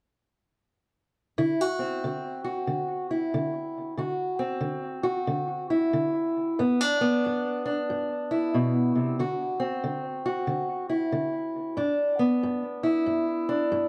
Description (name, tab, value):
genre	blues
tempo	92 BPM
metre	4/4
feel	swing 62% on 8ths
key	unclear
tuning	A4 = 440 Hz
part	fingerpicked steel-string acoustic guitar	solo	1.4-13.9 s	G2 to F#4	-27 LUFS	equal	analog delay
room	wet studio reverb, RT60 0.7 s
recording	worn, warbling old tape, cassette tape, warbly pitch drift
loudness	-27 LUFS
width	mono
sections	1.4-11.8 A section; 11.8-13.9 B section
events	none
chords	1.4 D7; 6.6 G; 9.2 D7; 11.8 G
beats	| 1.38 2.03 2.68 3.33 | 3.98 4.63 5.28 5.93 | 6.58 7.23 7.88 8.53 | 9.18 9.83 10.48 11.13 | 11.78 12.42 13.07 13.72